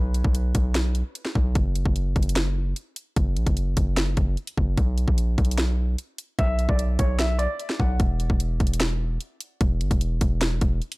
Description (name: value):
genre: hip hop, trap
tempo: 149 BPM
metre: 4/4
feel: half-time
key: B harmonic minor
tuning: A4 = 439 Hz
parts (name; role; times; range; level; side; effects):
- distorted 808-style bass; bass; 0.0-10.8 s; E1 to B1; -24 LUFS; equal; distortion
- trap drum kit; drums; 0.1-11.0 s; hi-hat, kick drum, snare drum; -24 LUFS; equal; overdrive
- dark baby grand piano; melody; 6.4-8.0 s; C#5 to F#5; -31 LUFS; equal; low-pass filter, ping-pong delay
room: digital ambience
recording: dark, warm production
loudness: -21 LUFS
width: side -23 dB against mid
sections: 0.0-11.0 A section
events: break 0.0-6.4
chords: 0.0 N.C.; 4.8 Bm; 8.0 N.C.